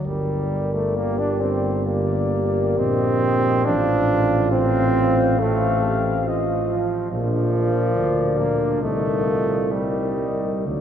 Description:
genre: classical, hymn-like piece for brass band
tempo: 68 BPM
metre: 4/4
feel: uneven beats, rubato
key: G minor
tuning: A4 = 440 Hz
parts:
  - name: warm trombone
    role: accompaniment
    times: 0.0-10.8 s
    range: F3 to D4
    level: -24 LUFS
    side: right 2 dB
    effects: none
  - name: dark cornet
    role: melody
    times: 0.1-10.8 s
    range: D5 to F5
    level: -28 LUFS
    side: left 5 dB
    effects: none
  - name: mellow French horn section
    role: second line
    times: 0.1-10.8 s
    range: D4 to Bb4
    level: -27 LUFS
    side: right 6 dB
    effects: none
  - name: mellow euphonium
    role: accompaniment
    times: 0.1-10.8 s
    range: A4 to C5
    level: -27 LUFS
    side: left 4 dB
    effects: none
  - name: mellow tuba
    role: bass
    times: 0.1-10.8 s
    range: G1 to D2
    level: -23 LUFS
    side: left 1 dB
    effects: none
room: wet cathedral reverb, RT60 6.6 s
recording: heard from further back in the room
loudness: -18 LUFS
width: side -9 dB against mid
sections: 0.1-10.8 A section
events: none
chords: 0.1 Gm; 3.7 F/A; 7.1 Bb; 8.8 Cm7

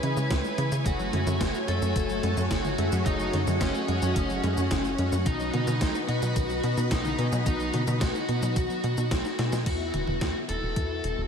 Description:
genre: synthwave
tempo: 109 BPM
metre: 4/4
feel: straight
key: E major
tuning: A4 = 437 Hz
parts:
  - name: biting lead guitar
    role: melody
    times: 0.0-11.2 s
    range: C#4 to B4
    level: -31 LUFS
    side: left 1 dB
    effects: overdrive, tape echo, shimmer reverb
  - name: string machine, full ensemble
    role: sustained chords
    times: 0.0-9.6 s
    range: A3 to D#6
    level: -34 LUFS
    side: equal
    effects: ensemble chorus, sidechain pumping, shimmer reverb
  - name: warbly dusty pluck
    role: arpeggios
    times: 0.0-9.6 s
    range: C#3 to F#4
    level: -37 LUFS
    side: right 3 dB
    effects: none
  - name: mellow synth brass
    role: stabs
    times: 0.0-11.3 s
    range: A3 to G#5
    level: -35 LUFS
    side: left 2 dB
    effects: chorus, tape echo, shimmer reverb
  - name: tight sequencer bass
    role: bass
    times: 0.0-11.3 s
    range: E1 to C#3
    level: -29 LUFS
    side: equal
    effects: tube saturation
  - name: gated 80s digital drum machine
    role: drums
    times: 0.0-11.2 s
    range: crash cymbal, hi-hat, shaker, snare drum, toms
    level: -34 LUFS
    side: equal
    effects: gated reverb, gated reverb snare, overdrive
  - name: electronic kick drum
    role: drums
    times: 0.3-10.9 s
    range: none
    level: -29 LUFS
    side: equal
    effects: overdrive
room: moderate huge ambient reverb, RT60 7.8 s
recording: dreamy mix soaked in reverb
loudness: -24 LUFS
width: side -7 dB against mid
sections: 0.0-9.7 A section; 9.7-11.3 B section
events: drum fill 9.3-9.7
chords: 0.0 C#madd9; 0.9 F#madd9; 5.3 B; 9.7 Esus2

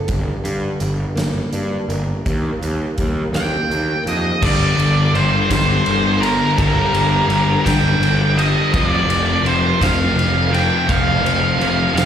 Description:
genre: quiet-loud alternative rock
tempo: 56 BPM (dotted quarters)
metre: 6/8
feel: straight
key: G minor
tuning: A4 = 441 Hz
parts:
  - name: fingerpicked steel-string acoustic guitar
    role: arpeggios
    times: 0.0-4.4 s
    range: G2 to Bb4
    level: -26 LUFS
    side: right 1 dB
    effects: none
  - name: fuzz picked electric bass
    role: bass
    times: 0.1-12.1 s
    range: F1 to G2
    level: -20 LUFS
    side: equal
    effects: overdrive
  - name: big rock drum kit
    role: drums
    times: 0.1-12.1 s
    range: crash cymbal, hi-hat, kick drum, ride cymbal, snare drum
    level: -24 LUFS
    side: equal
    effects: none
  - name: octave-fuzz lead guitar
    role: melody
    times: 3.4-12.1 s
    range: Bb4 to G5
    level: -19 LUFS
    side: right 2 dB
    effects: distortion, slapback echo
  - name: scooped high-gain guitar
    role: riff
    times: 4.4-12.1 s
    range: F2 to G3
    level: -24 LUFS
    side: right 13 dB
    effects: distortion, slapback echo
  - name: sludgy distorted guitar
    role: riff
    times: 4.4-12.1 s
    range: F2 to G3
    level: -20 LUFS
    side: left 7 dB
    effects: overdrive
room: light reverb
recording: live gig heard through the venue's PA, recital hall reverb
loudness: -15 LUFS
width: side -9 dB against mid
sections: 0.0-4.4 A section; 4.4-12.1 B section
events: none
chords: 0.1 Gm; 2.3 Eb; 4.4 Gm; 8.7 F5

